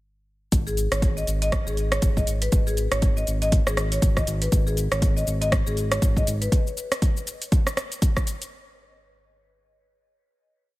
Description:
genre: afro house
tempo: 120 BPM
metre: 4/4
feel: swing 58% on 16ths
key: G# minor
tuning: A4 = 441 Hz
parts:
  - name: smooth gliding synth bass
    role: bass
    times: 0.5-6.5 s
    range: G#1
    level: -26 LUFS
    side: equal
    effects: sidechain pumping
  - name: afro-pop drum kit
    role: drums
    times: 0.5-8.5 s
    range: cabasa, hi-hat, rim click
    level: -28 LUFS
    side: equal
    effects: none
  - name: electronic kick drum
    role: drums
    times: 0.5-8.2 s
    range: none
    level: -21 LUFS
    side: equal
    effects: overdrive
  - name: marimba with hard mallets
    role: arpeggios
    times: 0.7-6.5 s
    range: G#4 to D#5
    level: -29 LUFS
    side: left 2 dB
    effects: sidechain pumping, dub echo
room: digital ambience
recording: faint mains hum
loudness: -21 LUFS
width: side -18 dB against mid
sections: 0.5-8.5 drop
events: drop 0.5-8.5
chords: none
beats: | 0.52 1.02 1.52 2.02 | 2.52 3.02 3.52 4.02 | 4.52 5.02 5.52 6.02 | 6.52 7.02 7.52 8.02

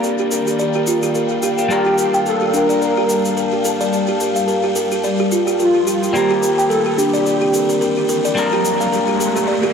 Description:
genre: organic downtempo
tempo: 108 BPM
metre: 4/4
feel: swing 56% on 16ths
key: unclear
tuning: A4 = 439 Hz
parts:
  - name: clean electric guitar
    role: accompaniment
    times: 0.0-9.5 s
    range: Eb3 to Bb4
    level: -23 LUFS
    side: left 3 dB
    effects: tape echo
  - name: ethereal airy pad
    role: sustained chords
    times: 0.0-9.5 s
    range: Eb3 to A5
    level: -23 LUFS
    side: left 2 dB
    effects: ensemble chorus, built-in reverb
  - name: buzzing kalimba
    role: arpeggios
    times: 0.0-9.7 s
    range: D4 to G5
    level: -18 LUFS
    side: right 1 dB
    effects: low-pass filter, tape echo
  - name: shaker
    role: drums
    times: 0.0-9.5 s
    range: none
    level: -28 LUFS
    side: left 2 dB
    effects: tape echo
  - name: breathy flute-like synth lead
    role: melody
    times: 1.7-8.1 s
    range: F4 to Bb4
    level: -20 LUFS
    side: equal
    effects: ensemble chorus, analog delay
  - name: riser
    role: sound effects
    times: 7.4-9.7 s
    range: none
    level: -26 LUFS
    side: right 1 dB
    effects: none
room: wet spring reverb, RT60 1.4 s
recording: echo-heavy mix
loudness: -14 LUFS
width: side -6 dB against mid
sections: 0.0-9.7 A section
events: riser 7.4-9.7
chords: 0.0 Ebmaj7; 1.7 Gm7; 6.1 Ebmaj7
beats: 0.04 0.59 1.15 | 1.70 2.26 2.81 3.37 | 3.93 4.48 5.04 5.59 | 6.15 6.70 7.26 7.82 | 8.37 8.93 9.48

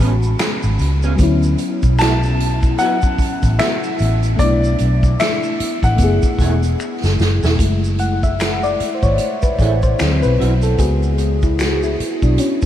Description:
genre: R&B, neo-soul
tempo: 75 BPM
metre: 4/4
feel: swing 60% on 16ths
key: F# minor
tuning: A4 = 439 Hz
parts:
  - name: warm baby grand piano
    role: melody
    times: 0.0-6.8 s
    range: D5 to B5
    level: -23 LUFS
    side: left 2 dB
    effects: ping-pong delay
  - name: electric guitar through a small old amp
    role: second line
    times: 0.0-10.5 s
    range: A3 to G#4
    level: -28 LUFS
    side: right 4 dB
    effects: ensemble chorus
  - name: FM electric piano with soft pad layer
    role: accompaniment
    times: 0.0-12.7 s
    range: F#3 to F#5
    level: -20 LUFS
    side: left 2 dB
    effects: chorus, tremolo
  - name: vintage muted fingered electric bass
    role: bass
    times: 0.0-12.4 s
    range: E1 to D2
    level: -16 LUFS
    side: equal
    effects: none
  - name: unplugged drum kit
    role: drums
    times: 0.0-12.7 s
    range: finger snaps, hi-hat, kick drum, snare drum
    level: -20 LUFS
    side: equal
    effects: none
  - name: tube shaker and finger snaps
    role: percussion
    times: 0.2-12.7 s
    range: none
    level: -36 LUFS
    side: equal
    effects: none
room: moderate huge ambient reverb, RT60 7.6 s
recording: dreamy mix soaked in reverb, vinyl crackle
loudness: -14 LUFS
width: side -11 dB against mid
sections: 0.0-7.6 A section; 7.6-12.7 B section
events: drum fill 6.8-7.6; FM electric piano solo 7.6-12.7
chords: 0.0 Amaj9; 1.2 D69 (rootless); 4.4 Bm7; 6.0 F#m9; 10.0 D9; 10.8 C#7sus4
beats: 0.39 | 1.19 1.99 2.79 3.59 | 4.39 5.19 5.99 6.79 | 7.59 8.39 9.19 9.99 | 10.79 11.59 12.39

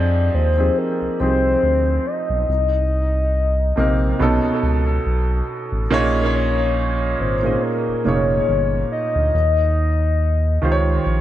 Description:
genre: R&B, neo-soul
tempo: 70 BPM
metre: 4/4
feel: swing 55% on 16ths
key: unclear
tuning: A4 = 442 Hz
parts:
  - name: soft octave-layered synth lead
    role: melody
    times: 0.0-11.2 s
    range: Bb4 to Eb5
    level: -22 LUFS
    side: left 3 dB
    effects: chorus, phaser, tape echo
  - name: warm concert grand piano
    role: accompaniment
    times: 0.0-11.2 s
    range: Bb2 to Eb5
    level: -21 LUFS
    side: right 2 dB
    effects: tape echo
  - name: smooth synth bass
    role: bass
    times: 0.0-11.2 s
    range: F1 to F2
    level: -19 LUFS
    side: equal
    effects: none
room: light reverb, small room ambience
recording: echo-heavy mix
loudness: -16 LUFS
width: side -13 dB against mid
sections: 0.0-11.2 A section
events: none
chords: 0.0 Fm7; 2.5 Cm7; 4.2 B9; 5.9 Bbm7; 9.3 Eb7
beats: 0.76 1.62 | 2.48 3.33 4.19 5.05 | 5.90 6.76 7.62 8.47 | 9.33 10.19 11.05

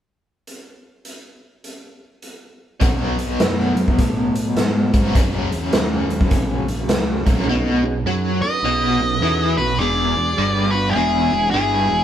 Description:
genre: blues rock power trio and southern rock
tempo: 103 BPM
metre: 4/4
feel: swing 64% on 8ths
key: B mixolydian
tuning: A4 = 439 Hz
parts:
  - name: raw garage drum kit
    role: drums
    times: 0.5-7.4 s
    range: hi-hat, kick drum, snare drum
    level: -20 LUFS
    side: equal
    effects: none
  - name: biting overdriven guitar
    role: riff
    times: 2.8-12.0 s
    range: E2 to B3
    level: -22 LUFS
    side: equal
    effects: tremolo
  - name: growling picked electric bass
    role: bass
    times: 2.8-12.0 s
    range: E1 to A2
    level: -24 LUFS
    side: equal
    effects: overdrive
  - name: mellow tonewheel organ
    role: sustained chords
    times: 7.5-12.0 s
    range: B3 to B4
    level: -27 LUFS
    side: right 3 dB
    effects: slow rotary speaker
  - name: octave-fuzz lead guitar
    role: melody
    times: 8.4-12.0 s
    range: G4 to D#5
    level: -19 LUFS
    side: left 1 dB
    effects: distortion
  - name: bluesy overdriven lead guitar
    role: second line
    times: 8.4-12.0 s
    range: D4 to B4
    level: -29 LUFS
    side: right 7 dB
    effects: distortion
room: moderate stone room reverb, RT60 1.4 s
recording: band playing live in one room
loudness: -16 LUFS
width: side -10 dB against mid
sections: 0.5-2.8 A section; 2.8-7.5 B section; 7.5-12.0 C section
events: none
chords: 0.5 N.C.; 2.8 B5; 5.2 F#; 7.5 B7; 9.8 E7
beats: | 0.47 1.05 1.64 2.23 | 2.81 3.40 3.98 4.57 | 5.15 5.74 6.32 6.90 | 7.48 8.06 8.65 9.23 | 9.81 10.39 10.96 11.54

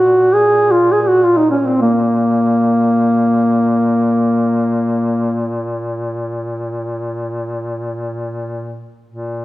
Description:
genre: caucasian folk, Caucasian lament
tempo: free time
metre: none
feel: none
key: unclear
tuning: A4 = 440 Hz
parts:
  - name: dark duduk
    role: melody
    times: 0.0-5.6 s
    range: Bb3 to Ab4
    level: -12 LUFS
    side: equal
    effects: none
  - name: warm duduk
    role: drone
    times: 0.0-9.4 s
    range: Bb2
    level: -22 LUFS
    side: left 1 dB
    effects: none
room: moderate recital hall reverb, RT60 1.6 s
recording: none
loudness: -13 LUFS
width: side -16 dB against mid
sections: 0.0-9.1 A section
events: none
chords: none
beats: free time

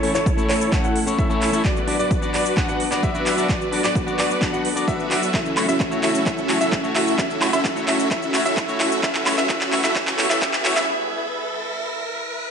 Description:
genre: EDM, festival progressive house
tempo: 130 BPM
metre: 4/4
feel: straight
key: B minor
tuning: A4 = 441 Hz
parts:
  - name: clean electric guitar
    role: accompaniment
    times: 0.0-10.7 s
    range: A3 to F#5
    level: -26 LUFS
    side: left 3 dB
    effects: sidechain pumping, digital delay
  - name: dark studio string section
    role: sustained chords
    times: 0.0-12.5 s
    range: E3 to E5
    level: -30 LUFS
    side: right 1 dB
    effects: sidechain pumping, low-pass filter
  - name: bright baby grand piano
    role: arpeggios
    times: 0.0-10.9 s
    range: C#5 to F#5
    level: -27 LUFS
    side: equal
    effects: sidechain pumping, low-pass filter, digital delay
  - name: dense compressed supersaw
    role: riff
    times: 0.0-10.9 s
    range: C#4 to F#5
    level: -24 LUFS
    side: right 1 dB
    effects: sidechain pumping, low-pass filter, digital delay
  - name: big-room dance drum kit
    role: drums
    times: 0.0-10.9 s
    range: handclaps, hi-hat, shaker, woodblock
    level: -24 LUFS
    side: right 1 dB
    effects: overdrive, high-pass filter on snare, high-pass filter on perc, high-pass filter on hats, high-pass filter on room
  - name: riser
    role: sound effects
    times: 2.9-12.5 s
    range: none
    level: -33 LUFS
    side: equal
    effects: none
  - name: electronic kick drum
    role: drums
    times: 0.3-10.5 s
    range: none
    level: -24 LUFS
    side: equal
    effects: overdrive
room: moderate lush hall reverb, RT60 1.6 s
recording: high-pass filter, nothing above 10.4 kHz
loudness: -18 LUFS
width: side -6 dB against mid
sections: 0.0-12.5 A section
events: build-up 0.0-12.5; drum fill 0.0-10.9; filter sweep on grand piano 0.0-12.5; filter sweep on string section 0.0-12.5; filter sweep 0.0-12.5; break 10.9-12.5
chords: 0.0 A; 1.6 Bm; 5.3 F#m7; 9.0 Em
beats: 0.26 0.72 1.19 | 1.65 2.11 2.57 3.03 | 3.49 3.96 4.42 4.88 | 5.34 5.80 6.26 6.72 | 7.19 7.65 8.11 8.57 | 9.03 9.49 9.96 10.42 | 10.88 11.34 11.80 12.26

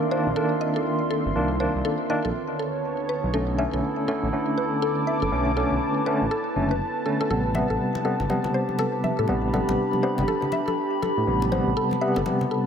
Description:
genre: deep house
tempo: 121 BPM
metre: 4/4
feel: swing 60% on 16ths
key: unclear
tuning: A4 = 440 Hz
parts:
  - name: dark analog pad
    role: sustained chords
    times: 0.0-12.7 s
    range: D3 to D6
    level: -30 LUFS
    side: equal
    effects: chorus, vintage 12-bit sampler grit
  - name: tine electric piano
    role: stabs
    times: 0.0-12.7 s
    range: C3 to D4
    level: -26 LUFS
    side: equal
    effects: medium tremolo, ping-pong delay
  - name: warbly tape-like pad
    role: texture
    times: 0.0-12.7 s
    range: B3 to B5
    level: -29 LUFS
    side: right 2 dB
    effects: chorus, built-in reverb
  - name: mallet-like synth pluck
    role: arpeggios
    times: 0.1-12.6 s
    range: A4 to E5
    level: -31 LUFS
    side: left 2 dB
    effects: chorus, ping-pong delay
  - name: smooth gliding synth bass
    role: bass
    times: 0.3-12.2 s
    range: F#1 to A2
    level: -28 LUFS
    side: equal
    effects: none
  - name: congas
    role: percussion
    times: 7.5-12.5 s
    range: none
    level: -32 LUFS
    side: left 3 dB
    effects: none
room: moderate plate reverb, RT60 2.6 s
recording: none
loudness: -22 LUFS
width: side -7 dB against mid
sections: 0.0-12.7 A section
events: none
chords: 0.0 Cm9; 2.3 Bm9; 7.3 Am9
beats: 0.36 0.86 | 1.35 1.85 2.35 2.84 | 3.34 3.83 4.33 4.82 | 5.32 5.82 6.31 6.81 | 7.30 7.80 8.29 8.79 | 9.29 9.78 10.28 10.77 | 11.27 11.77 12.26

